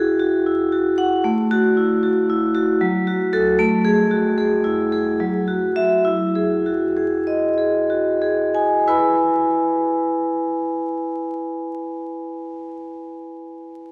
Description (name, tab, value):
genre	classical, contemporary piece for solo vibraphone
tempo	61-78 BPM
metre	3/4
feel	straight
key	E major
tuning	A4 = 441 Hz
part	vibraphone with medium hard mallets	solo	0.0-13.9 s	F#3 to B5	-20 LUFS	equal	none
room	wet church reverb, RT60 3.6 s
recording	heard from further back in the room, vinyl crackle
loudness	-19 LUFS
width	mono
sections	0.0-8.9 A section; 8.9-11.8 B section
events	slowing down 2.4-8.9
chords	0.0 Eadd9; 1.2 A5; 2.8 F#m; 3.6 A5; 5.2 Esus2/F#; 6.1 Emaj9; 8.9 E